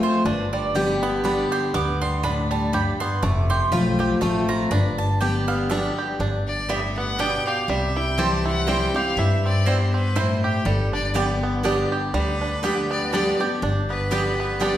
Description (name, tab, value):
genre	bluegrass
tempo	121 BPM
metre	3/4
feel	swing 55% on 8ths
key	G mixolydian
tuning	A4 = 441 Hz
part	bluegrass banjo	melody	0.0-14.8 s	D3 to G4	-27 LUFS	right 2 dB	none
part	picked steel-string acoustic guitar	accompaniment	0.0-14.8 s	F2 to G4	-24 LUFS	left 1 dB	none
part	mandolin	stabs	0.0-14.7 s	B3 to D6	-28 LUFS	right 3 dB	none
part	upright bass	bass	0.2-14.8 s	F1 to G2	-27 LUFS	equal	none
part	bright fiddle	second line	6.5-14.8 s	G4 to A5	-28 LUFS	left 2 dB	none
room	wet recital hall reverb, RT60 1.4 s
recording	recorded in a church or concert hall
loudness	-20 LUFS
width	side -12 dB against mid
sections	0.0-6.2 A section; 6.2-14.8 A section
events	mandolin solo 0.0-6.2; fiddle solo 6.2-14.8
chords	0.3 G; 3.2 F; 4.7 G; 7.7 C; 10.7 G